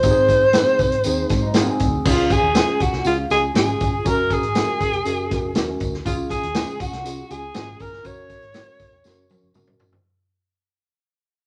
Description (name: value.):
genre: uptempo 1960s-style soul.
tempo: 120 BPM.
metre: 4/4.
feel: straight.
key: Db major.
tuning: A4 = 440 Hz.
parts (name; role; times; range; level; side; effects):
breathy alto saxophone; melody; 0.0-9.6 s; F4 to Db5; -23 LUFS; equal; none.
mellow tine electric piano; accompaniment; 0.0-9.9 s; Cb4 to Bb4; -28 LUFS; equal; none.
vintage muted fingered electric bass; bass; 0.0-10.0 s; F1 to Ab2; -31 LUFS; equal; none.
vintage drum kit; drums; 0.0-10.0 s; crash cymbal, hi-hat, kick drum, snare drum, toms; -25 LUFS; equal; none.
tambourine; percussion; 0.0-9.9 s; none; -39 LUFS; equal; none.
clean electric guitar; riff; 1.4-2.0 s; Gb3 to Ab4; -30 LUFS; equal; spring reverb.
vibraphone with hard mallets; second line; 2.1-9.6 s; F5 to Db6; -32 LUFS; equal; none.
room: moderate large studio reverb, RT60 0.9 s.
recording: none.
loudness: -20 LUFS.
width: mono.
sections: 0.0-2.0 A section; 2.0-10.0 B section.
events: fade-out 2.0-10.0; drum fill 9.0-10.0.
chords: 0.0 Ab; 2.0 Db; 4.1 Gb; 6.1 Db; 8.1 Gb.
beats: | 0.04 0.54 1.04 1.55 | 2.05 2.55 3.05 3.55 | 4.05 4.55 5.05 5.55 | 6.05 6.55 7.05 7.55 | 8.05 8.55 9.05 9.55.